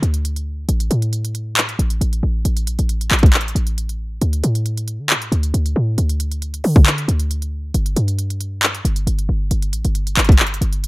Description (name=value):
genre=hip hop, trap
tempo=136 BPM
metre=4/4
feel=half-time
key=unclear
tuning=A4 = 438 Hz
part: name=short 808-style bass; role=bass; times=0.0-10.9 s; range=G1 to D3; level=-18 LUFS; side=equal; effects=none
part: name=trap drum kit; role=drums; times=0.0-10.9 s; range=handclaps, hi-hat, kick drum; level=-16 LUFS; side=equal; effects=none
room=little or no reverb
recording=none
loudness=-16 LUFS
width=side -20 dB against mid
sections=0.0-10.9 A section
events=none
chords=none